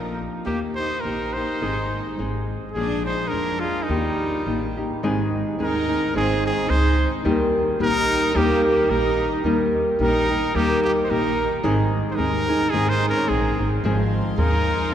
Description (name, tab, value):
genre	mexican folk, mariachi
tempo	108 BPM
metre	2/4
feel	swing 54% on 8ths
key	Eb major, Ab major from 5.0 s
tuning	A4 = 440 Hz
part	bright trumpet	melody	0.0-14.9 s	Eb4 to C5	-25 LUFS	equal	none
part	clear chamber violin section	second line	0.0-14.9 s	G3 to Eb4	-30 LUFS	right 2 dB	none
part	nylon-string guitar	accompaniment	0.0-14.9 s	Ab2 to Ab4	-24 LUFS	left 1 dB	none
part	upright bass	bass	0.0-14.9 s	Ab1 to F2	-26 LUFS	equal	none
part	concert harp	arpeggios	5.0-14.9 s	Bb4 to C6	-27 LUFS	right 2 dB	none
part	warm chamber violin section	sustained chords	13.8-14.9 s	Ab4 to C6	-34 LUFS	left 1 dB	none
room	wet cathedral reverb, RT60 5.2 s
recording	recorded in a church or concert hall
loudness	-19 LUFS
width	side -10 dB against mid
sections	0.0-5.0 A section; 5.0-14.9 B section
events	none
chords	0.5 Eb; 1.6 Ab; 2.8 Bb7; 3.9 Eb; 5.0 Ab; 7.2 Eb; 11.7 Ab; 13.8 Ab6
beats	| 0.47 1.05 | 1.62 2.20 | 2.76 3.33 | 3.90 4.47 | 5.04 5.60 | 6.15 6.70 | 7.25 7.80 | 8.35 8.90 | 9.45 10.01 | 10.56 11.11 | 11.65 12.19 | 12.74 13.29 | 13.84 14.39 | 14.93